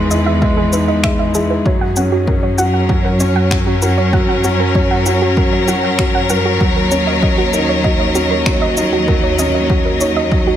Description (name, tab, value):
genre	piano and strings electronica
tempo	97 BPM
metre	4/4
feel	straight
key	unclear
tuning	A4 = 440 Hz
part	rich chamber string section	sustained chords	0.0-10.6 s	E3 to D#5	-18 LUFS	left 2 dB	none
part	warm upright piano	riff	0.0-10.6 s	F#3 to A#4	-18 LUFS	right 1 dB	tape echo
part	dark symphonic double bass section	bass	0.0-10.6 s	D#2 to F#2	-19 LUFS	equal	sidechain pumping
part	soft round pluck	arpeggios	0.1-10.6 s	F#4 to F#5	-21 LUFS	right 3 dB	chorus, sidechain pumping, tape echo
part	electronic shaker and finger snaps	drums	0.1-10.1 s	none	-22 LUFS	left 2 dB	overdrive
part	electronic kick drum	drums	0.4-10.4 s	none	-18 LUFS	equal	overdrive
room	light reverb, studio reverb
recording	none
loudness	-12 LUFS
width	side -10 dB against mid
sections	0.0-10.6 A section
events	none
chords	0.0 Emaj7; 1.7 F#; 6.6 D#m7